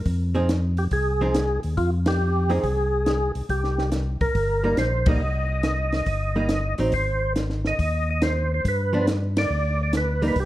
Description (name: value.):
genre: soul jazz organ trio.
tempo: 140 BPM.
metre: 4/4.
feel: swing 67% on 8ths.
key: C minor.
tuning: A4 = 440 Hz.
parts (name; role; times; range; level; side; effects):
tonewheel organ; bass; 0.1-10.5 s; G1 to G2; -24 LUFS; equal; overdrive, chorus vibrato, slow rotary speaker.
compact cocktail drum kit; drums; 0.1-10.5 s; hi-hat, kick drum, ride cymbal, snare drum; -26 LUFS; equal; none.
archtop guitar, miked and amplified; accompaniment; 0.3-10.4 s; F3 to Ab4; -26 LUFS; right 1 dB; none.
percussive tonewheel organ; melody; 0.8-10.5 s; F4 to Eb5; -26 LUFS; right 1 dB; slow rotary speaker, overdrive, chorus vibrato.
room: light reverb.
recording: dark, warm production.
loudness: -21 LUFS.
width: side -15 dB against mid.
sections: 0.0-10.5 A section.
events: band accent 2.0, 5.0, 9.3.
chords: 0.1 Fm7; 3.5 Cm7; 6.9 Ab; 8.6 G.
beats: | 0.06 0.49 0.92 1.35 | 1.78 2.21 2.63 3.06 | 3.49 3.92 4.35 4.78 | 5.21 5.64 6.07 6.50 | 6.93 7.36 7.79 8.22 | 8.65 9.07 9.50 9.93 | 10.36.